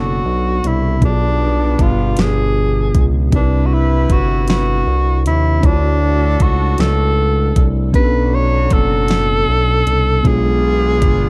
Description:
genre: slow six-eight R&B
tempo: 52 BPM (dotted quarters)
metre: 6/8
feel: straight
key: B minor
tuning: A4 = 437 Hz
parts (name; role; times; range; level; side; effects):
- breathy tenor saxophone; melody; 0.0-11.3 s; D4 to C#5; -21 LUFS; equal; none
- tine electric piano; accompaniment; 0.0-11.3 s; B2 to C#5; -23 LUFS; equal; overdrive
- warm horn section; stabs; 0.0-11.3 s; F#3 to B4; -31 LUFS; equal; none
- smooth synth bass; bass; 0.0-11.3 s; F#1 to D#2; -19 LUFS; equal; none
- smooth R&B drum kit; drums; 0.6-11.2 s; hi-hat, kick drum, snare drum; -18 LUFS; equal; none
room: little or no reverb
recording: dark, warm production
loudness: -15 LUFS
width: mono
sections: 0.0-11.3 A section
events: none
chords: 0.0 Bm9; 1.0 G7b9; 3.3 Cmaj9; 5.6 Dmaj7; 7.9 Bm9; 10.3 G7b9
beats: | 1.02 2.17 | 3.33 4.48 | 5.64 6.79 | 7.95 9.10 | 10.25

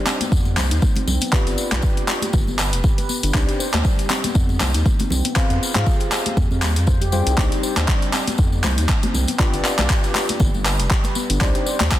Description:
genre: afro house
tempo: 119 BPM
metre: 4/4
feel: swing 56% on 16ths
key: C harmonic minor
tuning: A4 = 440 Hz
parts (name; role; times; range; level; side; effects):
- deep mellow chord stab; stabs; 0.0-12.0 s; C4 to G5; -28 LUFS; left 2 dB; chorus, sidechain pumping, dub echo
- handpan; arpeggios; 0.1-12.0 s; G3 to C5; -28 LUFS; equal; sidechain pumping, dub echo
- deep house drum kit; drums; 0.1-12.0 s; handclaps, hi-hat; -24 LUFS; equal; none
- congas; percussion; 0.1-11.9 s; none; -29 LUFS; left 2 dB; none
- tambourine; percussion; 0.1-12.0 s; none; -31 LUFS; left 4 dB; none
- round analog bass; bass; 0.3-11.9 s; F1 to Ab2; -21 LUFS; equal; sidechain pumping
- electronic kick drum; drums; 0.3-12.0 s; none; -19 LUFS; equal; none
room: light reverb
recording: dense, heavily limited modern master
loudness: -17 LUFS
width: side -14 dB against mid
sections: 0.0-12.0 A section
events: none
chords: 0.0 Cmadd9; 1.3 G7; 3.3 Cmadd9; 5.4 Fm; 7.4 Cmadd9; 9.4 G7; 11.4 Cmadd9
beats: 0.32 0.82 | 1.33 1.83 2.34 2.84 | 3.34 3.85 4.35 4.86 | 5.36 5.87 6.37 6.87 | 7.38 7.88 8.39 8.89 | 9.39 9.90 10.40 10.91 | 11.41 11.92

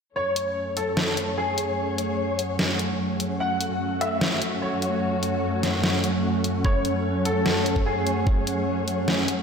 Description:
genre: heavy wobble dubstep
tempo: 148 BPM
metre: 4/4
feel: half-time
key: F# minor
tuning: A4 = 439 Hz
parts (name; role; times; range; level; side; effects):
- clear baby grand piano; melody; 0.2-9.4 s; G#4 to F#5; -28 LUFS; left 1 dB; ensemble chorus, ping-pong delay
- muted studio string section; sustained chords; 0.2-9.4 s; F#2 to C#5; -27 LUFS; equal; vintage 12-bit sampler grit, sidechain pumping, low-pass filter
- ethereal airy pad; texture; 0.9-9.4 s; A3 to F#5; -30 LUFS; equal; ensemble chorus, built-in reverb, sidechain pumping
- dubstep drum kit; drums; 0.4-9.4 s; hi-hat, snare drum; -27 LUFS; equal; none
- electronic kick drum; drums; 6.6-8.3 s; none; -22 LUFS; equal; none
room: wet lush hall reverb, RT60 2.0 s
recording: dreamy mix soaked in reverb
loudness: -22 LUFS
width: side -6 dB against mid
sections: 0.2-9.4 A section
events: none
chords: 0.2 F#m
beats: | 0.16 0.56 0.97 1.38 | 1.78 2.19 2.59 3.00 | 3.40 3.81 4.21 4.62 | 5.02 5.43 5.83 6.24 | 6.65 7.05 7.46 7.86 | 8.27 8.67 9.08

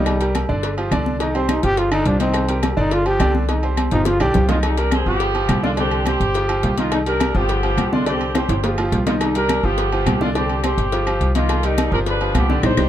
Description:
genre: latin, salsa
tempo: 210 BPM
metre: 4/4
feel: straight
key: C minor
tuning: A4 = 440 Hz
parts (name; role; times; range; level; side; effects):
- bright trombone; melody; 0.0-4.5 s; G3 to G4; -20 LUFS; equal; plate reverb
- bright concert grand piano; accompaniment; 0.0-12.9 s; D3 to Eb5; -24 LUFS; right 1 dB; none
- upright bass; bass; 0.0-12.9 s; G1 to C2; -21 LUFS; equal; none
- agogo bells and timbales; percussion; 0.1-12.8 s; none; -27 LUFS; right 2 dB; none
- claves; percussion; 0.1-12.8 s; none; -31 LUFS; left 4 dB; none
- congas; percussion; 0.1-12.8 s; none; -25 LUFS; left 2 dB; none
- cowbell and bongos; percussion; 0.1-12.8 s; none; -29 LUFS; left 7 dB; none
- clear horn section; melody; 4.5-12.9 s; G3 to C5; -22 LUFS; equal; none
room: moderate booth ambience, RT60 0.2 s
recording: dark, warm production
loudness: -16 LUFS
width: side -11 dB against mid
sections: 0.0-4.6 A section; 4.6-12.9 B section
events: trombone solo 0.0-4.6; drum fill 3.8-4.6, 8.3-9.2, 12.6; band accent 12.6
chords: 0.1 Cm7; 0.6 G5; 1.2 Cm; 1.8 G5; 2.3 Cm7; 2.9 G5; 3.5 Cm; 4.1 G7; 4.6 C5; 5.2 G7; 5.8 Csus2; 6.3 Fm9/G; 6.9 Cm7; 7.5 G7; 8.1 Csus2; 8.6 F7sus2/G; 9.2 Cm7; 9.8 G7; 10.3 Csus2; 10.9 Eb69/G; 11.5 Cm7; 12.1 G7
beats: | 0.06 0.35 0.63 0.92 | 1.20 1.49 1.77 2.06 | 2.35 2.63 2.92 3.20 | 3.49 3.77 4.06 4.35 | 4.63 4.92 5.20 5.49 | 5.78 6.06 6.35 6.63 | 6.92 7.20 7.49 7.78 | 8.06 8.35 8.63 8.92 | 9.21 9.49 9.78 10.06 | 10.35 10.63 10.92 11.21 | 11.49 11.78 12.06 12.35 | 12.64

